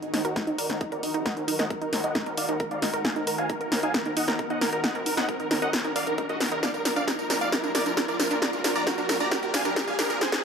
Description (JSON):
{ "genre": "uplifting trance", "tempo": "134 BPM", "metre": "4/4", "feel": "straight", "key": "Eb harmonic minor", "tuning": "A4 = 440 Hz", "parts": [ { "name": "big supersaw lead", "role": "melody", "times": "0.0-10.4 s", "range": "Eb4 to Bb5", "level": "-29 LUFS", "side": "right 1 dB", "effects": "sidechain pumping, low-pass filter, ping-pong delay" }, { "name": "lush unison pad", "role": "sustained chords", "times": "0.0-10.4 s", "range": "Eb3 to Bb4", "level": "-35 LUFS", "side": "left 1 dB", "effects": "chorus, sidechain pumping" }, { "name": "wide unison pluck", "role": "arpeggios", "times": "0.0-10.4 s", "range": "C4 to Bb4", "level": "-32 LUFS", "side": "right 3 dB", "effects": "sidechain pumping, ping-pong delay" }, { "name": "big-room dance drum kit", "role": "drums", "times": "0.0-10.4 s", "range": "hi-hat, snare drum, tambourine", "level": "-28 LUFS", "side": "left 1 dB", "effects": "small room ambience" }, { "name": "riser", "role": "sound effects", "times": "1.2-10.4 s", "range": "none", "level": "-34 LUFS", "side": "right 1 dB", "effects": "none" }, { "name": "gritty driven synth bass", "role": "bass", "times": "0.1-10.4 s", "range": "Eb1 to Bb2", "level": "-38 LUFS", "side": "left 1 dB", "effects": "none" }, { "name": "electronic kick drum", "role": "drums", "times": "0.4-10.3 s", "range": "none", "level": "-36 LUFS", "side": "left 1 dB", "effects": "high-pass filter on kick, small room ambience" } ], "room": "moderate lush hall reverb, RT60 1.6 s, digital ambience", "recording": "high-pass filter", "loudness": "-24 LUFS", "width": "side -6 dB against mid", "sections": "0.0-10.4 A section", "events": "build-up 0.0-10.4; drum fill 0.0-10.4; filter sweep on supersaw synth 0.0-10.4; filter sweep on synth arpeggio sound 0.0-10.4; riser 1.2-10.4", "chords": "0.0 Ebm; 6.6 Bb" }